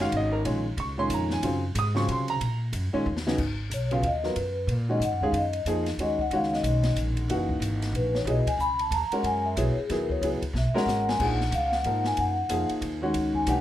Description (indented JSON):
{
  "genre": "modal jazz",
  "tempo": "184 BPM",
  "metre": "3/4",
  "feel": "swing 61% on 8ths",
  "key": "Gb lydian",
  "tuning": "A4 = 439 Hz",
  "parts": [
    { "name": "warm concert grand piano", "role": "accompaniment", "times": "0.0-13.6 s", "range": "Bb2 to Eb6", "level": "-28 LUFS", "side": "equal", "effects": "none" },
    { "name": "upright bass", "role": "bass", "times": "0.0-13.6 s", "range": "Gb1 to C3", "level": "-29 LUFS", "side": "equal", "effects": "none" },
    { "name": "open jazz drum kit", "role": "drums", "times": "0.0-13.6 s", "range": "crash cymbal, hi-hat, kick drum, ride cymbal, snare drum", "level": "-36 LUFS", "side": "left 1 dB", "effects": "none" },
    { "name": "vibraphone with soft mallets", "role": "melody", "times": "3.7-13.6 s", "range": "Ab4 to Cb6", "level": "-28 LUFS", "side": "left 2 dB", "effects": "none" }
  ],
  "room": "moderate studio reverb, RT60 0.5 s",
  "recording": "none",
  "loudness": "-24 LUFS",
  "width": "side -12 dB against mid",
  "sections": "0.0-3.4 A section; 3.4-11.2 A section; 11.2-13.6 A section",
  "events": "drum fill 3.1-3.4, 10.5-11.2; vibraphone solo 3.4-13.6",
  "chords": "0.0 Gbmaj9; 3.4 Db13sus4; 7.3 Gb13sus4; 11.2 Gbmaj9"
}